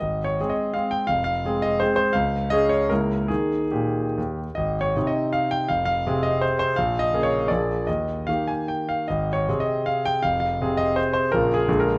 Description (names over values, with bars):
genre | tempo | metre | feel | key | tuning
classical, romantic triple-time dance for piano with dotted rhythms | 128-184 BPM | 3/4 | rubato | Ab major | A4 = 440 Hz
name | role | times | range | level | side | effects
clear concert grand piano | solo | 0.0-12.0 s | F1 to Ab5 | -23 LUFS | equal | none
room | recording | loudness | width
light reverb | close, detailed microphones | -23 LUFS | mono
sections
0.0-4.6 A section; 4.6-12.0 A section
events
none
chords
0.0 Ab; 1.1 Fm; 2.1 Db; 2.9 Bbm7b5/Db; 3.3 Eb; 4.6 Ab; 5.7 Fm; 6.8 Bbm7; 7.5 Bb7; 7.9 Eb; 9.1 Ab; 10.2 Fm; 11.3 Bbm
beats
| 0.01 0.39 0.75 | 1.09 1.45 1.81 | 2.15 2.52 2.90 | 3.29 3.72 4.17 | 4.58 4.96 5.35 | 5.70 6.06 6.43 | 6.77 7.12 7.50 | 7.88 8.28 8.70 | 9.10 9.48 9.88 | 10.24 10.61 10.98 | 11.32 11.68